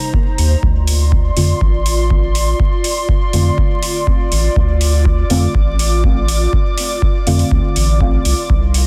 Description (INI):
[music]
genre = dub techno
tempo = 122 BPM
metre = 4/4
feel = straight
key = D phrygian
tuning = A4 = 441 Hz
[part]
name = airy breathy pad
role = sustained chords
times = 0.0-8.9 s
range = Eb4 to D6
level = -24 LUFS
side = equal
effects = chorus, sidechain pumping
[part]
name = deep mellow chord stab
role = stabs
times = 0.0-8.5 s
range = C3 to F4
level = -25 LUFS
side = equal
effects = chorus, phaser, vintage 12-bit sampler grit, sidechain pumping, dub echo
[part]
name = electronic kick drum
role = drums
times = 0.1-8.6 s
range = none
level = -18 LUFS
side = equal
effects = none
[part]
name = round analog bass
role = bass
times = 0.4-8.9 s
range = A1 to F2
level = -17 LUFS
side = equal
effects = sidechain pumping
[part]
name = electronic hi-hat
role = drums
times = 0.4-8.8 s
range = none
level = -24 LUFS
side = equal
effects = none
[sound]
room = little or no reverb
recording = dense, heavily limited modern master, vinyl crackle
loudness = -15 LUFS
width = mono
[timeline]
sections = 0.0-8.9 A section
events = none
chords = 0.0 Cm7; 0.6 Dm7